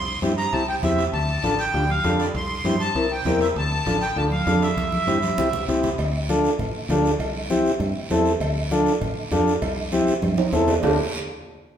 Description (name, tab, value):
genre	latin, cumbia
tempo	198 BPM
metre	4/4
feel	straight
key	D minor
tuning	A4 = 440 Hz
part	accordion	melody	0.0-5.6 s	D5 to C6	-25 LUFS	equal	none
part	fingered electric bass	bass	0.0-11.0 s	A1 to G2	-27 LUFS	equal	none
part	combo organ	accompaniment	0.2-11.0 s	C4 to Bb4	-23 LUFS	left 1 dB	none
part	congas	percussion	0.2-10.9 s	none	-29 LUFS	right 2 dB	none
part	guiro	percussion	0.2-10.9 s	none	-36 LUFS	right 3 dB	none
part	timbales and cowbell	percussion	0.2-10.9 s	none	-31 LUFS	right 5 dB	none
room	wet large studio reverb, RT60 1.3 s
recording	band playing live in one room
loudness	-20 LUFS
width	side -9 dB against mid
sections	0.0-6.0 A section; 6.0-10.8 B section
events	drum fill 4.8-6.0, 10.2-10.8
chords	0.0 C; 1.1 Dm; 2.4 C; 3.6 Dm; 4.8 C; 6.0 Dm; 7.2 C; 8.4 Dm; 9.6 C; 10.8 Dm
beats	0.23 0.53 0.83 | 1.14 1.44 1.74 2.05 | 2.35 2.65 2.96 3.26 | 3.56 3.87 4.17 4.47 | 4.78 5.08 5.38 5.68 | 5.99 6.29 6.59 6.90 | 7.20 7.50 7.81 8.11 | 8.41 8.71 9.02 9.32 | 9.62 9.93 10.23 10.53 | 10.83